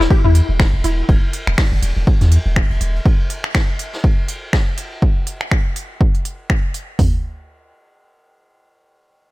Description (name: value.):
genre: minimal techno.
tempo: 122 BPM.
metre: 4/4.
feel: swing 57% on 16ths.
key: E minor.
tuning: A4 = 436 Hz.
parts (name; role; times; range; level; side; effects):
mallet-like synth pluck; riff; 0.0-0.9 s; E4 to G4; -22 LUFS; left 4 dB; ensemble chorus, sidechain pumping, digital delay.
punchy sub bass; bass; 0.0-3.0 s; E1 to E2; -15 LUFS; equal; sidechain pumping.
vintage brush drum kit; drums; 0.0-5.0 s; hi-hat, ride cymbal, snare drum; -30 LUFS; equal; sidechain pumping on cymbals, high-pass filter on cymbals, sidechain pumping on hats, high-pass filter on hats, high-pass filter on snare, high-pass filter on room.
punchy analog drum machine; drums; 0.1-7.1 s; hi-hat, kick drum, toms; -15 LUFS; equal; none.
techno drum kit; drums; 0.3-6.9 s; finger snaps, hi-hat; -24 LUFS; equal; none.
room: small room reverb.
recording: none.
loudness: -14 LUFS.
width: side -19 dB against mid.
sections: 0.0-7.0 A section; 7.0-9.3 B section.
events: filter sweep on synth arpeggio sound 0.0-1.1.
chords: none.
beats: 0.10 0.60 | 1.09 1.58 2.07 2.56 | 3.06 3.55 4.04 4.53 | 5.02 5.51 6.01 6.50 | 6.99.